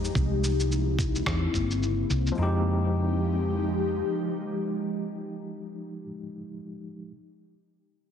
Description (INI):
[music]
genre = sunset chillout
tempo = 108 BPM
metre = 4/4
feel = swing 58% on 16ths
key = F minor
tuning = A4 = 440 Hz
[part]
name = overdriven tine electric piano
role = accompaniment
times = 0.0-7.1 s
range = F3 to G4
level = -33 LUFS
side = equal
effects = fast tremolo, auto-pan, tape echo
[part]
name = ethereal airy pad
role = sustained chords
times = 0.0-5.4 s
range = Db3 to G4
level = -30 LUFS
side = left 3 dB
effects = ensemble chorus, built-in reverb, phaser
[part]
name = hollow-body short-scale fingered electric bass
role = bass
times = 0.0-4.0 s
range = G1 to F2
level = -27 LUFS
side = equal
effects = none
[part]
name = electronic shaker and rim click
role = drums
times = 0.0-2.4 s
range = none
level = -35 LUFS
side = equal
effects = low-pass filter on perc, low-pass filter on snare
[part]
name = electronic kick drum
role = drums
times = 0.2-1.7 s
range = none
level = -30 LUFS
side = equal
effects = none
[sound]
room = light reverb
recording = heavily compressed radio sound, multiband compression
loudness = -25 LUFS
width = side -8 dB against mid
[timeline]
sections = 0.0-2.4 A section; 2.4-4.6 B section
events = filter sweep on ambient pad 0.0-2.4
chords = 0.2 C7b9; 2.4 Fm9